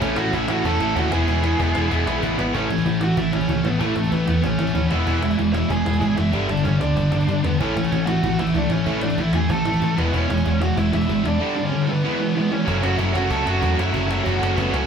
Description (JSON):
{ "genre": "punk rock", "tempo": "190 BPM", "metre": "4/4", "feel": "straight", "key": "A major", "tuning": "A4 = 440 Hz", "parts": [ { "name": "lead guitar through a small cranked amp", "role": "melody", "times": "0.0-14.9 s", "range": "A3 to A5", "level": "-26 LUFS", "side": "right 2 dB", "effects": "overdrive" }, { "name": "distorted electric guitar", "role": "riff", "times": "0.0-14.9 s", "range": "G2 to F#4", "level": "-23 LUFS", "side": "left 4 dB", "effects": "distortion" }, { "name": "distorted electric guitar", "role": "riff", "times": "0.0-14.9 s", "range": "G2 to F#4", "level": "-24 LUFS", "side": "right 6 dB", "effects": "distortion" }, { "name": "heavy high-gain guitar", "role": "riff", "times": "0.0-14.9 s", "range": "E2 to A3", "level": "-29 LUFS", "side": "left 1 dB", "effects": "distortion" }, { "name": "overdriven picked electric bass", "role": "bass", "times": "0.0-14.8 s", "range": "E1 to A2", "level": "-25 LUFS", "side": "equal", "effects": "none" }, { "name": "cajon", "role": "drums", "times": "0.0-14.8 s", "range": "none", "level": "-33 LUFS", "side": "left 1 dB", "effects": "none" } ], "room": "moderate large studio reverb, RT60 1.4 s", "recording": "band playing live in one room", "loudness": "-18 LUFS", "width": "side -7 dB against mid", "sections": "0.0-2.5 A section; 2.5-12.7 B section; 12.7-14.9 A section", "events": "drum fill 2.2-2.5", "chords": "0.0 A; 1.1 E; 2.5 A; 4.9 E; 6.3 G; 7.6 A; 10.0 E; 11.4 G; 12.0 E; 12.7 F#m" }